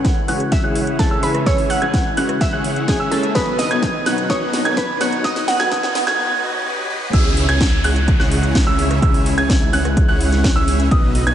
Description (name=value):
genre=EDM, festival progressive house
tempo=127 BPM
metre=4/4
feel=straight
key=C# minor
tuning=A4 = 439 Hz
part: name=glassy wavetable pluck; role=melody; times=0.0-6.1 s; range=G#4 to F#5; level=-23 LUFS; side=right 2 dB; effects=chorus, tape echo
part: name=felt-muted upright piano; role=accompaniment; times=0.0-6.2 s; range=D#3 to C#5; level=-27 LUFS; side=left 2 dB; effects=sidechain pumping, tape echo
part: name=lush unison pad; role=sustained chords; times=0.0-11.3 s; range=B2 to E4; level=-27 LUFS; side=equal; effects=chorus, sidechain pumping
part: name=bright baby grand piano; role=arpeggios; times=0.0-11.3 s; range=D#6 to G#6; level=-23 LUFS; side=right 2 dB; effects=sidechain pumping, low-pass filter, tape echo
part: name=dense compressed supersaw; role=riff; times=0.0-11.3 s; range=B3 to G#5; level=-24 LUFS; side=equal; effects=sidechain pumping, low-pass filter, tape echo
part: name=electronic kick drum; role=drums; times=0.0-11.0 s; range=none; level=-18 LUFS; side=equal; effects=overdrive
part: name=house drum kit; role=drums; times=0.0-11.3 s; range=crash cymbal, hi-hat, rim click, snare drum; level=-26 LUFS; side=left 1 dB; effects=overdrive
part: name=riser, swell and downlifter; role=sound effects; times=2.2-10.9 s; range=none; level=-30 LUFS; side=equal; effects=none
part: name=wide detuned saw bass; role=bass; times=7.1-11.3 s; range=B1 to C#2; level=-19 LUFS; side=equal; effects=chorus, tube saturation, sidechain pumping
room=moderate church reverb, RT60 3.6 s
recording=dreamy mix soaked in reverb, high-pass filter, nothing above 10.5 kHz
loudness=-15 LUFS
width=side -10 dB against mid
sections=0.0-7.1 A section; 7.1-11.3 B section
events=build-up 0.0-7.1; drum fill 0.0-6.2; filter sweep on supersaw synth 0.0-7.1; filter sweep on grand piano 0.0-7.1; filter sweep 0.0-7.1; break 6.2-7.1; swell 6.2-7.1; drop 7.1-11.3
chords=0.0 C#m; 3.4 B; 7.1 C#m